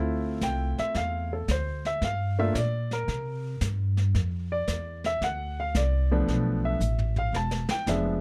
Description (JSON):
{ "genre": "jazz piano trio", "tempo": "113 BPM", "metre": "4/4", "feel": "swing 68% on 8ths", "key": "F major", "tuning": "A4 = 440 Hz", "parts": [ { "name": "warm baby grand piano", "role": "melody", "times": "0.0-8.2 s", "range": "F3 to A5", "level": "-31 LUFS", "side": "equal", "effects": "none" }, { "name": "upright bass", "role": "bass", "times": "0.0-8.2 s", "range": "E1 to C3", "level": "-30 LUFS", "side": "equal", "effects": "none" }, { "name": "jazz brush drum kit", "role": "drums", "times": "0.4-8.2 s", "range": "brushed snare drum, hi-hat, kick drum, snare drum, toms", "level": "-36 LUFS", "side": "equal", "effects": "none" } ], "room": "little or no reverb", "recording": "dark, warm production", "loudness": "-28 LUFS", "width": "mono", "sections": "0.0-8.2 A section", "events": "drum fill 6.8-7.9", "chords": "0.0 Dm9; 2.0 Gm7; 3.1 C5; 4.1 Fmaj7(no3); 6.3 Bm7b5; 7.3 E7b9" }